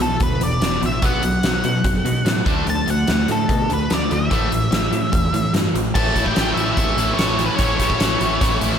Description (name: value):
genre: classic rock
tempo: 146 BPM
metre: 4/4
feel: straight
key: unclear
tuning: A4 = 440 Hz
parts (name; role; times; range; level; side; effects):
- octave-fuzz lead guitar; melody; 0.0-8.6 s; A4 to A5; -23 LUFS; equal; distortion, slapback echo
- cranked stack guitar; riff; 0.0-8.8 s; E2 to E4; -24 LUFS; left 7 dB; overdrive, slapback echo
- distorted electric guitar; riff; 0.0-8.8 s; E2 to E4; -25 LUFS; right 9 dB; overdrive, slapback echo
- growling picked electric bass; bass; 0.0-8.8 s; E1 to B2; -25 LUFS; equal; overdrive
- huge arena drum kit; drums; 0.0-8.8 s; crash cymbal, hi-hat, kick drum, snare drum; -21 LUFS; equal; none
room: moderate recital hall reverb, RT60 1.6 s, small room reverb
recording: big arena sound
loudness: -16 LUFS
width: side -8 dB against mid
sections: 0.0-6.0 A section; 6.0-8.8 B section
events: none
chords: 0.0 E5; 1.0 B5; 2.5 D5; 4.3 A5; 6.0 A